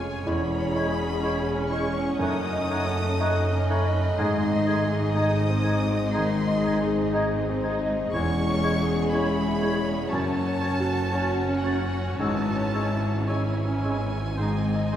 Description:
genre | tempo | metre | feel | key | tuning
classical, romantic movement for piano and orchestra | 60 BPM | 4/4 | uneven beats, rubato | C# minor | A4 = 440 Hz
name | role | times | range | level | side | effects
clear concert grand piano | melody | 0.0-15.0 s | E2 to D#5 | -27 LUFS | left 1 dB | none
rich chamber violin section | melody | 0.0-15.0 s | F#5 to D#6 | -35 LUFS | left 1 dB | none
clear symphonic violin section | second line | 0.0-15.0 s | G#3 to D#5 | -37 LUFS | left 1 dB | none
warm clarinet | second line | 0.0-15.0 s | C#4 to E4 | -37 LUFS | equal | none
warm oboe | second line | 0.0-15.0 s | B#4 to D#5 | -37 LUFS | equal | none
mellow bassoon | accompaniment | 0.0-15.0 s | F#3 to A3 | -36 LUFS | equal | none
warm symphonic viola section | accompaniment | 0.0-15.0 s | Ab3 to G#4 | -34 LUFS | equal | none
rich symphonic cello section | bass | 0.0-15.0 s | E2 to G#2 | -31 LUFS | right 1 dB | none
rich symphonic double bass section | bass | 0.0-15.0 s | E1 to G#1 | -33 LUFS | right 1 dB | none
mellow flute section | second line | 0.3-15.0 s | D#6 to A6 | -37 LUFS | left 1 dB | none
mellow French horn section | sustained chords | 0.3-15.0 s | D#3 to D#4 | -31 LUFS | left 1 dB | none
room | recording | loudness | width
wet scoring stage reverb, RT60 1.6 s | heard from further back in the room | -22 LUFS | side -10 dB against mid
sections
0.0-15.0 A section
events
none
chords
0.3 C#m/E; 2.2 D#m7b5/F#; 4.2 G#; 8.1 C#m/E; 10.1 F#m; 12.2 C#m/G#; 14.4 G#

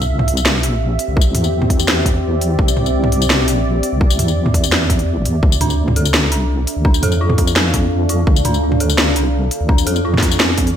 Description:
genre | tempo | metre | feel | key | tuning
half-time drum and bass | 169 BPM | 4/4 | half-time | D minor | A4 = 438 Hz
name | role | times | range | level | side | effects
deep dark ambient pad | sustained chords | 0.0-10.8 s | C4 to F5 | -22 LUFS | equal | chorus, built-in reverb, sidechain pumping
deep soft wobble bass | bass | 0.0-10.8 s | G1 to F2 | -18 LUFS | equal | chorus
drum and bass drum kit | drums | 0.0-10.7 s | hi-hat, snare drum, tambourine, toms | -18 LUFS | equal | studio reverb, gated reverb
electronic kick drum | drums | 1.2-10.7 s | none | -15 LUFS | equal | studio reverb
dark detuned synth bell | arpeggios | 5.6-10.8 s | C4 to A4 | -22 LUFS | right 2 dB | chorus, digital delay
room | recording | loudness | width
light reverb | bright 1980s-style digital production | -13 LUFS | side -9 dB against mid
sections
0.0-10.8 A section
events
none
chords
0.0 Cadd9; 5.4 Dmadd9

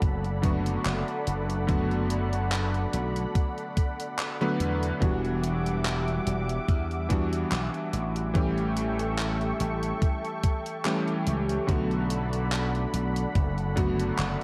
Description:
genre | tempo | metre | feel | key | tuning
vaporwave | 72 BPM | 4/4 | swing 54% on 16ths | B minor | A4 = 440 Hz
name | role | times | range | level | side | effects
clear electric grand piano | accompaniment | 0.0-14.4 s | D3 to B4 | -33 LUFS | equal | analog chorus, vintage 12-bit sampler grit, tape echo
lush unison pad | sustained chords | 0.0-14.4 s | G3 to D6 | -37 LUFS | equal | chorus
slap bass | bass | 0.0-14.3 s | E1 to E2 | -32 LUFS | equal | tube saturation
electronic kick drum | drums | 0.0-14.0 s | none | -28 LUFS | equal | none
gated 80s digital drum machine | drums | 0.0-14.4 s | handclaps, hi-hat | -37 LUFS | equal | gated reverb
room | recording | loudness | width
light reverb, digital ambience | cassette tape | -28 LUFS | mono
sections
0.0-14.4 A section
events
none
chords
0.0 Bm7; 5.0 Em9; 8.4 A7; 11.7 Bm7

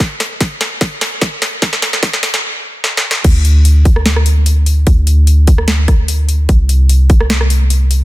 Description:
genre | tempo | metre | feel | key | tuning
future bass | 148 BPM | 4/4 | swing 53% on 16ths, half-time | unclear | A4 = 440 Hz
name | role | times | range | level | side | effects
electronic kick drum | drums | 0.0-7.2 s | none | -10 LUFS | equal | overdrive
trap drum kit | drums | 0.0-8.0 s | crash cymbal, hi-hat, rim click, snare drum | -16 LUFS | equal | overdrive, high-pass filter on hats, high-pass filter on snare, high-pass filter on cymbals
warm 808-style bass | bass | 3.2-8.0 s | C2 to D2 | -10 LUFS | equal | sidechain pumping
room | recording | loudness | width
little or no reverb | dense, heavily limited modern master, high-pass filter | -10 LUFS | side -18 dB against mid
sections
0.0-3.2 A section; 3.2-8.0 B section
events
build-up 0.0-3.2; drum fill 0.0-2.4, 2.8-3.2; stop 2.4-3.2; drop 3.2-8.0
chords
none

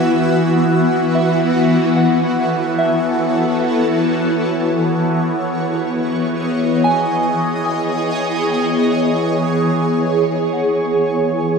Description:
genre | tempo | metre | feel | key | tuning
ambient | 73 BPM | 3/4 | straight | unclear | A4 = 440 Hz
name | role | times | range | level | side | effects
shimmering ambient pad | sustained chords | 0.0-11.6 s | E3 to E5 | -15 LUFS | equal | chorus, built-in reverb, phaser
bowed-like drone | drone | 0.0-9.8 s | E3 to E4 | -24 LUFS | right 1 dB | built-in reverb
soft synth bell | arpeggios | 1.1-11.6 s | E5 to G#5 | -24 LUFS | right 1 dB | chorus, ping-pong delay
room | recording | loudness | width
wet scoring stage reverb, RT60 1.9 s | dark, warm production | -14 LUFS | side -5 dB against mid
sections
0.0-9.7 A section; 9.7-11.6 B section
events
none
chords
0.0 B7sus4/E; 4.8 C#m7/E; 9.7 F#m9/E

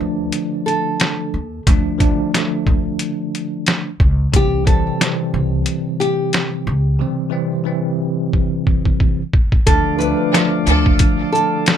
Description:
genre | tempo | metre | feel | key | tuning
hip hop, boom-bap hip-hop | 90 BPM | 4/4 | swing 56% on 16ths | D minor | A4 = 440 Hz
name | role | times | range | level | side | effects
bell-like tine electric piano | accompaniment | 0.0-11.8 s | C3 to D4 | -20 LUFS | equal | fast stereo tremolo
upright bass | bass | 0.0-11.0 s | C2 to Eb2 | -20 LUFS | equal | none
trip hop sampler-style drum kit | drums | 0.3-11.8 s | hi-hat, kick drum, shaker, snare drum | -16 LUFS | equal | none
nylon-string guitar | melody | 0.7-11.8 s | G4 to B4 | -21 LUFS | equal | plate reverb
tonewheel organ | sustained chords | 9.7-11.8 s | A4 to D6 | -26 LUFS | equal | slow rotary speaker
dark studio string section | stabs | 10.3-11.0 s | F3 to A4 | -21 LUFS | left 2 dB | ping-pong delay
room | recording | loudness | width
light reverb | none | -15 LUFS | side -9 dB against mid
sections
0.0-9.7 A section; 9.7-11.8 B section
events
drum fill 8.3-9.7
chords
0.0 Dm; 4.3 C; 9.7 Dm

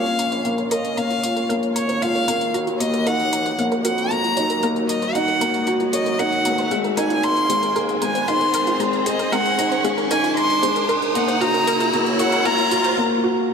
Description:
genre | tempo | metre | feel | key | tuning
piano and strings electronica | 115 BPM | 4/4 | straight | unclear | A4 = 440 Hz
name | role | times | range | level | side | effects
rich violin | melody | 0.0-13.0 s | Db5 to C6 | -22 LUFS | equal | ping-pong delay
dark studio string section | sustained chords | 0.0-13.0 s | Db3 to Db5 | -29 LUFS | left 1 dB | low-pass filter
felt-muted upright piano | riff | 0.0-13.5 s | Ab3 to Db5 | -22 LUFS | left 1 dB | none
warm studio double bass section | bass | 0.0-13.0 s | Gb1 to Gb2 | -33 LUFS | left 1 dB | none
riser | sound effects | 0.4-13.0 s | none | -27 LUFS | equal | none
electronic hi-hat | drums | 0.1-12.9 s | none | -31 LUFS | left 2 dB | overdrive
analog pluck | arpeggios | 0.2-12.9 s | F4 to Bb5 | -29 LUFS | right 3 dB | chorus, ping-pong delay
room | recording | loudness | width
moderate lush hall reverb, RT60 2.5 s | none | -17 LUFS | side -6 dB against mid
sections
0.0-13.5 A section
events
build-up 0.0-13.5; filter sweep on string section 0.0-13.5; filter sweep on synth arpeggio sound 0.0-13.5; riser 0.4-13.0; break 13.0-13.5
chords
0.0 Bbm; 2.5 Ebm7; 6.7 Ab; 10.9 Gb

